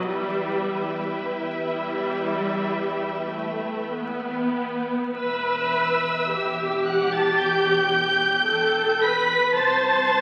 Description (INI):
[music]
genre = classical, slow romantic movement for string orchestra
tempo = 44-56 BPM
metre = 4/4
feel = rubato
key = E minor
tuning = A4 = 440 Hz
[part]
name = dark studio violin section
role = melody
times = 0.0-10.2 s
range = G5 to B6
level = -28 LUFS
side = equal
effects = none
[part]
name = clear studio violin section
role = second line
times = 0.0-10.2 s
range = B4 to B5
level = -32 LUFS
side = equal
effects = none
[part]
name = rich studio viola section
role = accompaniment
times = 0.0-10.2 s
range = G3 to C5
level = -26 LUFS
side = equal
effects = none
[part]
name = dark studio cello section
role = bass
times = 0.0-10.2 s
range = E2 to E4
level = -39 LUFS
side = equal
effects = none
[part]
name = rich studio double bass section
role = bass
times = 0.0-10.2 s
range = E1 to E2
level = -40 LUFS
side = equal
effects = none
[sound]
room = wet scoring stage reverb, RT60 2.0 s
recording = very old 78 rpm record, vinyl crackle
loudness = -23 LUFS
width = mono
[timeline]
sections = 0.0-5.2 A section; 5.2-10.2 A section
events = none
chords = 0.1 Em; 9.6 N.C.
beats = | 0.09 1.42 2.70 3.94 | 5.17 6.32 7.42 8.48 | 9.56